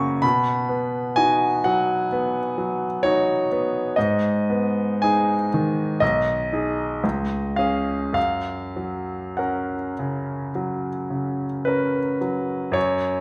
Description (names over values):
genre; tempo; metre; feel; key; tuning
classical, romantic nocturne for solo piano; 49-68 BPM; 4/4; rubato; F# major; A4 = 440 Hz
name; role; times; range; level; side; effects
clear grand piano; solo; 0.0-13.2 s; B1 to C#6; -23 LUFS; equal; none
room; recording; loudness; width
wet recital hall reverb, RT60 1.2 s; none; -23 LUFS; mono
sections
0.0-12.8 A section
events
none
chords
0.2 B; 4.0 G#m; 6.0 G#m/B; 7.0 C#; 8.2 F#